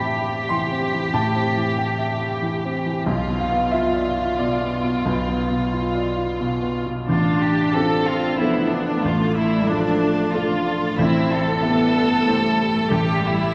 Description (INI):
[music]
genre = neoclassical piano and strings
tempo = 92 BPM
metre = 3/4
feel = rubato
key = unclear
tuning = A4 = 442 Hz
[part]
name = muted chamber violin section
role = melody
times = 0.0-13.5 s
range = D4 to A4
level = -26 LUFS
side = equal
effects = none
[part]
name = clear baby grand piano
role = accompaniment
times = 0.0-13.5 s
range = A1 to C6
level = -24 LUFS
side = equal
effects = none
[part]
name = muted cello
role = second line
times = 7.1-13.5 s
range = F3 to D4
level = -25 LUFS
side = equal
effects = none
[part]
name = granular cloud pad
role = sustained chords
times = 8.7-13.5 s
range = G3 to E5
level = -31 LUFS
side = equal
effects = built-in reverb
[sound]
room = wet concert hall reverb, RT60 2.2 s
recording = heard from further back in the room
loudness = -21 LUFS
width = mono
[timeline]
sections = 0.0-7.1 A section; 7.1-13.5 B section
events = none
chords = 0.0 Am7; 3.1 Bdim; 7.1 Dm/A; 11.0 C/A